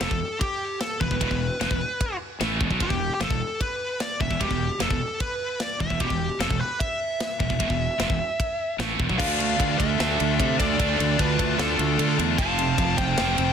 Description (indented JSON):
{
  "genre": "heavy metal",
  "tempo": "150 BPM",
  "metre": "4/4",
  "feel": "straight",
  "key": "E phrygian",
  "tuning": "A4 = 440 Hz",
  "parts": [
    { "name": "smooth overdriven lead guitar", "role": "melody", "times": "0.0-13.5 s", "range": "G4 to A5", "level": "-28 LUFS", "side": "equal", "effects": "none" },
    { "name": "distorted electric guitar", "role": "riff", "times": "0.0-13.5 s", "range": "E2 to D4", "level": "-29 LUFS", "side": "right 12 dB", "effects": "distortion" },
    { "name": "scooped high-gain guitar", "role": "riff", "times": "0.0-13.5 s", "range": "E2 to F4", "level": "-29 LUFS", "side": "left 12 dB", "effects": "distortion" },
    { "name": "fuzz fingered electric bass", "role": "bass", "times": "0.0-13.5 s", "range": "E1 to D3", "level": "-29 LUFS", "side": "equal", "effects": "overdrive" },
    { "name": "tight metal drum kit", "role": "drums", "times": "0.0-13.5 s", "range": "crash cymbal, kick drum, ride cymbal, snare drum", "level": "-28 LUFS", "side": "equal", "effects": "soft clipping on snare" },
    { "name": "high-gain lead guitar", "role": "second line", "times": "9.2-13.5 s", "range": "F4 to F5", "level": "-33 LUFS", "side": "right 4 dB", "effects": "distortion" },
    { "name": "distorted electric guitar", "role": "riff", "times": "9.2-13.5 s", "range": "F2 to D4", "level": "-30 LUFS", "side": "left 2 dB", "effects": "overdrive" }
  ],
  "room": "light reverb, studio ambience",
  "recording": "dense, heavily limited modern master",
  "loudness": "-22 LUFS",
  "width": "side -8 dB against mid",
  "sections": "0.0-9.2 A section; 9.2-13.5 B section",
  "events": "half time 9.2-13.5",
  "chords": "0.0 E5; 9.2 Dm; 12.4 F",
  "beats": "0.01 0.41 0.81 | 1.21 1.60 2.00 2.40 | 2.80 3.20 3.60 4.00 | 4.40 4.80 5.20 5.60 | 6.00 6.40 6.80 7.20 | 7.60 8.00 8.40 8.80 | 9.20 9.59 9.99 10.39 | 10.79 11.19 11.59 11.98 | 12.38 12.78 13.18"
}